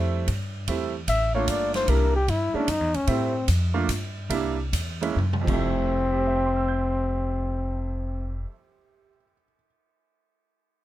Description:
jazz, small-group swing and bop; 127-150 BPM; 3/4; swing 66% on 8ths; F major; A4 = 441 Hz
bright upright piano; accompaniment; 0.0-9.6 s; F2 to G6; -29 LUFS; right 6 dB
upright bass; bass; 0.0-8.4 s; F1 to A2; -26 LUFS; equal
swinging big-band drum kit; drums; 0.3-5.5 s; crash cymbal, hi-hat, kick drum, ride cymbal, snare drum, toms; -32 LUFS; equal
breathy flugelhorn; melody; 1.1-8.4 s; C4 to E5; -25 LUFS; left 2 dB
little or no reverb; close, detailed microphones; -23 LUFS; side -14 dB against mid
0.7-5.6 A section; 5.6-8.5 B section
slowing down 3.1-5.6; drum fill 5.2-5.6
0.0 Fmaj7; 0.7 Am7; 1.5 Gm7; 1.9 C7; 2.7 Gb5; 3.1 Am7; 3.9 N.C.; 4.3 C7; 5.2 N.C.; 5.4 Fmaj7

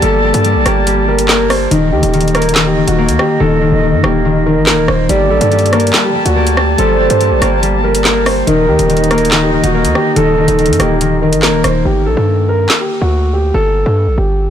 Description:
hip hop, drill; 142 BPM; 4/4; half-time; G harmonic minor; A4 = 438 Hz
dark grand piano; melody; 0.0-14.5 s; Eb4 to C5; -16 LUFS; equal; low-pass filter
concert harp; accompaniment; 0.0-14.5 s; Eb3 to Bb3; -15 LUFS; left 4 dB; low-pass filter
small flute group; sustained chords; 0.0-11.8 s; Eb4 to A5; -20 LUFS; right 1 dB
hard-hitting 808-style bass; bass; 0.0-14.5 s; Eb1 to G2; -16 LUFS; equal
drill drum kit; drums; 0.0-12.8 s; handclaps, hi-hat, rim click, snare drum; -17 LUFS; right 1 dB; soft clipping on snare
gliding portamento lead; second line; 5.1-11.0 s; A4 to D5; -17 LUFS; right 5 dB; chorus, ping-pong delay
small room ambience; blown-out, overdriven recording, overdrive; -9 LUFS; side -9 dB against mid
0.0-11.9 A section; 11.9-14.5 B section
hi-hats muted 3.4-5.1, 11.9-14.5
0.0 Gmadd9; 1.7 Eb; 5.1 Gmadd9; 8.5 Eb; 11.9 Gmadd9

